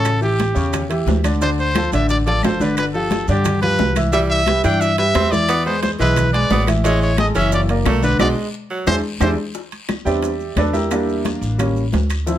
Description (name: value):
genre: latin, salsa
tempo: 177 BPM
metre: 4/4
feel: straight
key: A minor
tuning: A4 = 440 Hz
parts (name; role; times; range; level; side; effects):
- bright trumpet; melody; 0.0-9.3 s; G4 to G5; -20 LUFS; equal; plate reverb
- clear grand piano; accompaniment; 0.0-12.4 s; C#3 to G5; -21 LUFS; equal; none
- upright bass; bass; 0.0-12.4 s; F#1 to G2; -20 LUFS; equal; none
- congas; percussion; 0.0-12.4 s; none; -25 LUFS; left 1 dB; none
- bongos; percussion; 0.1-12.4 s; none; -29 LUFS; left 8 dB; none
- claves; percussion; 0.1-12.3 s; none; -33 LUFS; left 3 dB; none
- guiro; percussion; 0.1-12.4 s; none; -38 LUFS; left 4 dB; none
- maracas; percussion; 0.1-12.4 s; none; -37 LUFS; right 7 dB; none
- timbales; percussion; 0.1-12.3 s; none; -27 LUFS; right 6 dB; none
- raspy tenor saxophone; second line; 4.1-9.4 s; F#3 to D4; -23 LUFS; right 3 dB; none
room: light reverb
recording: none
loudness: -15 LUFS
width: side -12 dB against mid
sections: 0.0-9.6 A section; 9.6-12.4 B section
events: band accent 8.2-9.6; drum fill 8.5-9.6; grand piano solo 9.6-12.4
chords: 0.1 A7; 1.4 Dm7; 2.8 G7; 4.1 Cmaj7; 5.5 E7; 6.8 Amaj7; 7.5 F#7alt; 8.2 Bm; 8.9 E7#9; 9.6 Am11 (rootless); 10.9 Em7b5; 11.6 A7b9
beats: | 0.06 0.40 0.74 1.08 | 1.42 1.76 2.10 2.44 | 2.77 3.12 3.45 3.79 | 4.13 4.47 4.81 5.15 | 5.49 5.83 6.17 6.50 | 6.84 7.18 7.52 7.86 | 8.20 8.54 8.88 9.22 | 9.56 9.89 10.23 10.57 | 10.91 11.25 11.59 11.93 | 12.27